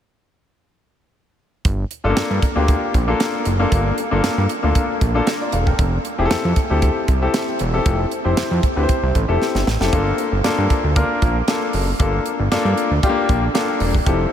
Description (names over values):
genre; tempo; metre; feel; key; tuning
early-eighties boogie funk; 116 BPM; 4/4; straight; G dorian; A4 = 440 Hz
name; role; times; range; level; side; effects
fat analog bass; bass; 1.6-14.3 s; E1 to G2; -19 LUFS; right 1 dB; none
tight funk drum kit; drums; 1.6-14.2 s; hi-hat, kick drum, snare drum; -22 LUFS; right 1 dB; none
clear baby grand piano; accompaniment; 2.0-14.3 s; A3 to G5; -20 LUFS; left 2 dB; none
room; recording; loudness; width
moderate huge ambient reverb, RT60 8.1 s; dreamy mix soaked in reverb; -16 LUFS; side -10 dB against mid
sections
1.7-9.9 A section; 9.9-14.3 B section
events
drum fill 9.4-9.9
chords
1.7 Gm9; 5.8 Fmaj9; 9.9 Gm9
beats
| 1.65 2.17 2.69 3.20 | 3.72 4.24 4.75 5.27 | 5.79 6.31 6.82 7.34 | 7.86 8.38 8.89 9.41 | 9.93 10.45 10.96 11.48 | 12.00 12.51 13.03 13.55 | 14.07